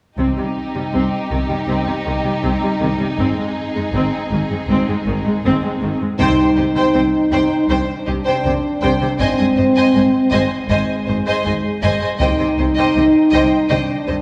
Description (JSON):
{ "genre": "cinematic, epic orchestral film score", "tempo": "80 BPM", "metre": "4/4", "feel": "straight", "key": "C minor", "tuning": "A4 = 440 Hz", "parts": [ { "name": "warm symphonic violin section", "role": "melody", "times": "0.2-14.2 s", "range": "G4 to Ab5", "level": "-30 LUFS", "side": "equal", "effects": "none" }, { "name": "rich symphonic violin section", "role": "second line", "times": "0.2-14.1 s", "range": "Eb4 to Eb5", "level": "-26 LUFS", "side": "equal", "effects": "none" }, { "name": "rich symphonic viola section", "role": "accompaniment", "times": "0.2-14.2 s", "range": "Eb3 to C5", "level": "-25 LUFS", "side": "equal", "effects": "none" }, { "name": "clear symphonic double bass section", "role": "bass", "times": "0.2-14.2 s", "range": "Ab1 to C2", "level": "-26 LUFS", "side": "equal", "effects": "none" }, { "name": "rich symphonic cello section", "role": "bass", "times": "0.2-14.2 s", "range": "Ab2 to C3", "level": "-26 LUFS", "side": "equal", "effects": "none" }, { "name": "mellow French horn section", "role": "sustained chords", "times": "6.2-14.2 s", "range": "Ab3 to Eb4", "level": "-19 LUFS", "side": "equal", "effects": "none" }, { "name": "taiko ensemble", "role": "drums", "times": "6.2-7.7, 12.2-13.7 s", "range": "none", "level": "-29 LUFS", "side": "equal", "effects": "none" } ], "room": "wet concert hall reverb, RT60 2.5 s", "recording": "small room ambience", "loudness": "-17 LUFS", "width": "mono", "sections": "0.2-6.2 A section; 6.2-14.2 B section", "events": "band accent 6.2-6.9", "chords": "0.2 Cm; 3.2 Ab; 6.2 Cm; 9.2 Ab; 12.2 Cm", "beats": "| 0.18 0.93 1.68 2.44 | 3.19 3.94 4.69 5.44 | 6.20 6.95 7.70 8.45 | 9.20 9.95 10.70 11.45 | 12.21 12.96 13.71" }